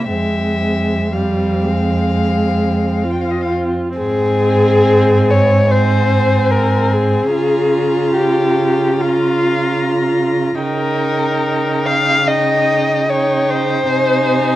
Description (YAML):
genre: classical, slow romantic movement for string quartet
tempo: 58-76 BPM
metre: 4/4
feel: rubato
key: F minor, Ab major from 4.0 s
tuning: A4 = 440 Hz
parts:
  - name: dark violin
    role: melody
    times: 0.0-14.6 s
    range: Eb5 to Bb5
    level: -24 LUFS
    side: left 5 dB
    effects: none
  - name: dark violin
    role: second line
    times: 0.0-14.6 s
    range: C4 to F5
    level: -17 LUFS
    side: left 2 dB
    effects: none
  - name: warm viola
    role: accompaniment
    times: 0.0-14.6 s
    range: G3 to F4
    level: -18 LUFS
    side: right 1 dB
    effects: none
  - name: rich cello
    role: bass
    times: 0.0-14.6 s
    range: F2 to Db3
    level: -18 LUFS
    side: right 2 dB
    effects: none
room: light reverb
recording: worn, warbling old tape, cassette tape, warbly pitch drift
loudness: -13 LUFS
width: side -14 dB against mid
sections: 0.0-4.0 A section; 4.0-14.6 B section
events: none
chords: 0.1 Fm; 4.0 Ab; 7.3 Bbm/Db; 10.6 Eb7/Db; 13.9 Ab/C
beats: | 0.10 1.12 2.10 3.04 | 3.99 4.88 5.71 6.52 | 7.35 8.16 9.00 9.82 | 10.62 11.45 12.28 13.11 | 13.91